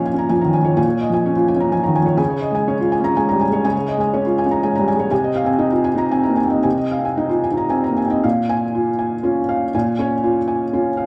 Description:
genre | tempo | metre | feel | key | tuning
neoclassical minimalist piano | 109-128 BPM | 3/4 | rubato | Bb minor | A4 = 441 Hz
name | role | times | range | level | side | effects
felt-muted upright piano | solo | 0.0-11.1 s | Bb2 to Bb5 | -18 LUFS | equal | slapback echo
room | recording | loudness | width
moderate stone room reverb, RT60 1.3 s | dark, warm production | -18 LUFS | mono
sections
0.0-8.2 A section; 8.2-11.1 B section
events
none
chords
0.0 Bbm7; 2.2 Db; 5.1 Fm7/C; 8.2 Bbm7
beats
0.30 | 0.77 1.24 1.72 | 2.19 2.68 3.17 | 3.65 4.13 4.62 | 5.11 5.60 6.11 | 6.65 7.19 7.72 | 8.24 8.74 9.24 | 9.74 10.22 10.71

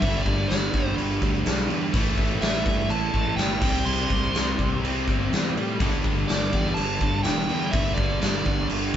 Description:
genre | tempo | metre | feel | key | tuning
hard rock | 124 BPM | 4/4 | straight | unclear | A4 = 440 Hz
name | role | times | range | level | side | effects
dark smooth lead guitar | melody | 0.0-8.7 s | D5 to C6 | -29 LUFS | right 2 dB | overdrive
tonewheel organ | sustained chords | 0.0-9.0 s | G3 to D5 | -38 LUFS | right 1 dB | none
crunchy overdriven guitar | riff | 0.0-9.0 s | G2 to C4 | -31 LUFS | left 6 dB | phaser
distorted electric guitar | riff | 0.0-9.0 s | G2 to C4 | -32 LUFS | right 6 dB | overdrive
distorted electric guitar | riff | 0.0-9.0 s | G2 to C4 | -33 LUFS | equal | distortion
fuzz fingered electric bass | bass | 0.0-9.0 s | E1 to A2 | -30 LUFS | equal | overdrive
huge arena drum kit | drums | 0.0-9.0 s | crash cymbal, kick drum, snare drum | -25 LUFS | equal | none
room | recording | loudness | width
light reverb | band playing live in one room, nothing above 7.8 kHz | -21 LUFS | side -10 dB against mid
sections
0.0-9.0 A section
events
none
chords
0.0 G5; 1.9 A5; 3.6 C5; 5.8 G5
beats
| 0.02 0.50 0.98 1.46 | 1.94 2.42 2.90 3.38 | 3.87 4.35 4.83 5.31 | 5.80 6.28 6.77 7.25 | 7.73 8.22 8.70

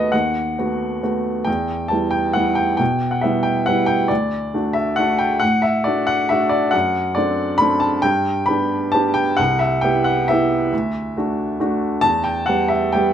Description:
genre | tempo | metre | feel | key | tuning
classical, piano waltz | 136 BPM | 3/4 | rubato | unclear | A4 = 440 Hz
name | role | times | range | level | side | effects
clear baby grand piano | solo | 0.0-13.1 s | C2 to B5 | -16 LUFS | equal | none
room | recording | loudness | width
light reverb | dark, warm production | -16 LUFS | side -9 dB against mid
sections
0.0-13.1 A section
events
none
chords
0.0 B7/D#; 1.5 Em; 4.1 D; 6.7 D7/F#; 8.0 G; 9.4 Cmaj7; 10.7 D; 12.0 Em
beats
| 0.13 0.57 1.03 | 1.47 1.91 2.36 | 2.80 3.23 3.67 | 4.10 4.53 4.98 | 5.42 5.86 6.30 | 6.74 7.17 7.61 | 8.04 8.48 8.94 | 9.38 9.83 10.28 | 10.72 11.16 11.60 | 12.04 12.48 12.95

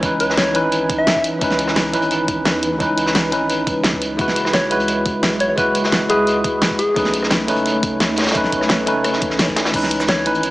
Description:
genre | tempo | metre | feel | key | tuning
liquid drum and bass | 173 BPM | 4/4 | straight | C# minor | A4 = 440 Hz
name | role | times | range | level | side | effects
bell-like tine electric piano | accompaniment | 0.0-10.5 s | E3 to B4 | -19 LUFS | equal | medium stereo tremolo, dub echo
ethereal airy pad | sustained chords | 0.0-10.5 s | E3 to C#5 | -27 LUFS | right 1 dB | none
saturated sub bass | bass | 0.0-10.5 s | F#1 to E2 | -31 LUFS | equal | none
crunchy breakbeat drum kit | drums | 0.0-10.5 s | hi-hat, snare drum | -23 LUFS | equal | high-pass filter on hats, high-pass filter on snare, high-pass filter on room
electronic kick drum | drums | 0.0-9.8 s | none | -27 LUFS | equal | none
pop drum kit | drums | 0.0-10.5 s | crash cymbal, hi-hat, rim click, shaker, snare drum | -21 LUFS | equal | none
soft struck synth lead | melody | 0.2-1.2, 4.5-7.3, 10.1-10.3 s | G#4 to E5 | -21 LUFS | left 1 dB | chorus, digital delay
room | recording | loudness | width
moderate lush hall reverb, RT60 1.9 s | small speaker sound | -15 LUFS | side -18 dB against mid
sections
0.0-10.5 A section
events
none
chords
0.0 C#m9; 4.2 F#9sus4; 6.8 B9; 9.7 C#m9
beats
| 0.03 0.38 0.72 1.07 | 1.42 1.76 2.11 2.46 | 2.80 3.15 3.50 3.84 | 4.19 4.54 4.88 5.23 | 5.58 5.92 6.27 6.62 | 6.96 7.31 7.66 8.01 | 8.35 8.70 9.04 9.39 | 9.74 10.09 10.43

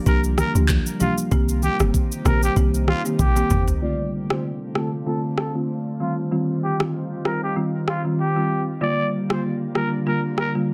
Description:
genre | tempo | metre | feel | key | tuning
afrobeats | 96 BPM | 4/4 | swing 55% on 16ths | G minor | A4 = 439 Hz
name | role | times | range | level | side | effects
glassy FM pad | sustained chords | 0.0-10.7 s | C3 to F4 | -32 LUFS | equal | ensemble chorus, built-in reverb, low-pass filter
growling trumpet | melody | 0.1-10.5 s | F4 to D5 | -30 LUFS | equal | low-pass filter, tape echo, plate reverb
folk marimba with medium mallets | accompaniment | 0.1-10.7 s | D3 to G4 | -27 LUFS | equal | low-pass filter
deep log drum bass | bass | 0.1-3.7 s | G1 to D2 | -23 LUFS | equal | none
afro-pop drum kit | drums | 0.1-10.5 s | handclaps, kick drum, rim click, shaker, toms | -26 LUFS | equal | none
congas | percussion | 0.4-3.7 s | none | -31 LUFS | equal | none
room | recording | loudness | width
moderate studio reverb, RT60 0.6 s | dense, heavily limited modern master | -22 LUFS | mono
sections
0.0-3.8 A section; 3.8-10.7 B section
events
drum fill 3.2-3.8; filter sweep 3.8-10.7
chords
0.0 Gm7; 1.3 Cm7; 3.8 Dm7; 6.0 Eb69; 8.8 Gm7/D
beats
0.07 0.69 | 1.31 1.94 2.56 3.19 | 3.81 4.44 5.07 5.69 | 6.32 6.94 7.57 8.19 | 8.81 9.44 10.06 10.69

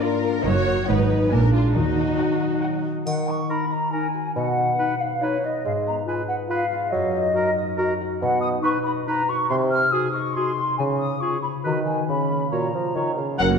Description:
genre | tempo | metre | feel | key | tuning
cinematic, playful, whimsical film cue | 140 BPM | 3/4 | straight | Eb minor | A4 = 440 Hz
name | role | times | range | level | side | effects
warm studio violin section | melody | 0.0-3.0, 13.4-13.5 s | D5 to Ab5 | -31 LUFS | left 4 dB | none
rich studio violin section | second line | 0.0-2.8, 13.4-13.6 s | Eb4 to Db5 | -26 LUFS | left 2 dB | none
rich studio viola section | accompaniment | 0.0-2.8, 13.4-13.6 s | F#3 to Gb4 | -28 LUFS | right 3 dB | none
dark French horn section | sustained chords | 0.0-2.8, 13.4-13.6 s | Gb3 to F#4 | -26 LUFS | left 3 dB | none
concert harp | arpeggios | 0.0-13.6 s | Gb2 to Eb5 | -28 LUFS | left 5 dB | none
rich studio cello section | bass | 0.4-2.1, 13.4-13.6 s | Gb2 to Eb3 | -28 LUFS | right 4 dB | none
rich studio double bass section | bass | 0.4-2.1, 13.4-13.6 s | Gb1 to Eb2 | -23 LUFS | right 4 dB | none
mellow flute section | second line | 3.1-13.6 s | C#5 to E#6 | -24 LUFS | left 1 dB | none
mellow bassoon | accompaniment | 3.1-13.4 s | A#2 to Ab3 | -27 LUFS | right 3 dB | none
triangle | percussion | 3.1-3.9 s | none | -40 LUFS | right 1 dB | none
mellow clarinet | second line | 3.5-13.6 s | Eb4 to A#4 | -30 LUFS | left 1 dB | none
warm oboe | second line | 3.5-13.5 s | G#4 to F#5 | -32 LUFS | right 2 dB | none
mellow tuba | bass | 13.4-13.6 s | F#1 | -22 LUFS | right 6 dB | none
room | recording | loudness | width
wet concert hall reverb, RT60 1.8 s | dark, warm production | -20 LUFS | side -6 dB against mid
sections
0.0-3.1 A section; 3.1-13.4 A section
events
none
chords
0.5 Ebm/Gb; 0.9 Abm7; 1.3 Bb7; 1.8 Ebm; 4.4 B; 5.6 Fdim/Ab; 6.9 Ebm/Gb; 8.2 B; 9.5 G#7/B#; 10.8 C#5; 11.7 B/D#; 12.1 F#/C#; 13.0 C#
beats
0.02 | 0.45 0.88 1.32 | 1.75 2.19 2.63 | 3.06 3.50 3.93 | 4.36 4.79 5.22 | 5.64 6.07 6.50 | 6.93 7.36 7.78 | 8.21 8.64 9.07 | 9.50 9.93 10.36 | 10.79 11.22 11.65 | 12.09 12.52 12.96 | 13.40

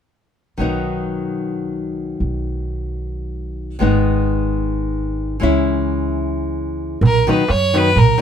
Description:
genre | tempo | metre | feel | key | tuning
balkan folk, Balkan wedding band | free time | none | none | B major | A4 = 440 Hz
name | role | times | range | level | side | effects
nylon-string guitar | accompaniment | 0.6-8.2 s | D#3 to E4 | -20 LUFS | left 3 dB | none
upright bass | bass | 0.6-8.1 s | G#1 to F#2 | -21 LUFS | right 1 dB | none
darbuka | percussion | 7.0-8.1 s | none | -17 LUFS | right 5 dB | none
clear fiddle | melody | 7.1-8.2 s | A#4 to C#5 | -16 LUFS | right 1 dB | none
room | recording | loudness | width
moderate small room reverb, RT60 0.5 s | minimal, uncompressed stereo recording | -17 LUFS | side -8 dB against mid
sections
0.6-7.0 A section; 7.0-8.2 B section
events
none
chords
0.6 B; 3.8 G#m; 5.4 C#m; 7.0 B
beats
free time

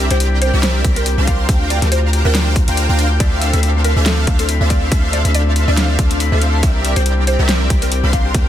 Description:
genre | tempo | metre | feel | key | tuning
future bass | 140 BPM | 4/4 | swing 56% on 16ths, half-time | unclear | A4 = 440 Hz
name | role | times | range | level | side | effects
Celtic harp | arpeggios | 0.0-8.5 s | C4 to G5 | -25 LUFS | left 8 dB | sidechain pumping, digital delay
big bright polysynth | riff | 0.0-8.5 s | C4 to C6 | -20 LUFS | right 1 dB | ensemble chorus, sidechain pumping
long sustained 808-style bass | bass | 0.0-8.5 s | C2 to D2 | -15 LUFS | equal | sidechain pumping
mallet-like synth pluck | melody | 0.1-8.4 s | A4 to F5 | -25 LUFS | right 1 dB | wide subtle chorus, sidechain pumping, digital delay
dubstep drum kit | drums | 0.1-8.4 s | hi-hat, snare drum | -22 LUFS | left 1 dB | none
electronic kick drum | drums | 0.8-8.4 s | none | -16 LUFS | equal | none
room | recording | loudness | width
little or no reverb | dense, heavily limited modern master | -12 LUFS | side -11 dB against mid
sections
0.0-8.5 A section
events
none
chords
0.0 C7; 3.2 Dm9; 6.6 C7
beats
0.20 0.63 1.06 | 1.49 1.92 2.35 2.77 | 3.20 3.63 4.06 4.49 | 4.92 5.34 5.77 6.20 | 6.63 7.06 7.49 7.92 | 8.35

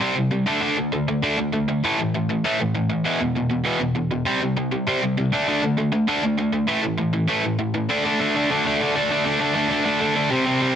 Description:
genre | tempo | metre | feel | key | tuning
punk | 198 BPM | 4/4 | straight | unclear | A4 = 438 Hz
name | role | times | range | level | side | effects
cranked stack guitar | solo | 0.0-10.8 s | E2 to D4 | -19 LUFS | equal | overdrive
room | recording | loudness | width
light reverb | heavily compressed radio sound | -19 LUFS | side -9 dB against mid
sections
0.0-7.9 A section; 7.9-10.8 B section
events
none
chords
0.5 D5; 1.8 A5; 3.1 E5; 4.3 C5; 5.3 D5; 6.7 A5; 7.9 D5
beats
0.00 0.31 | 0.62 0.92 1.23 1.53 | 1.84 2.14 2.45 2.75 | 3.06 3.36 3.66 3.97 | 4.27 4.57 4.88 5.18 | 5.48 5.78 6.09 6.39 | 6.69 6.99 7.29 7.60 | 7.90 8.20 8.50 8.80 | 9.10 9.40 9.70 10.01 | 10.31 10.61

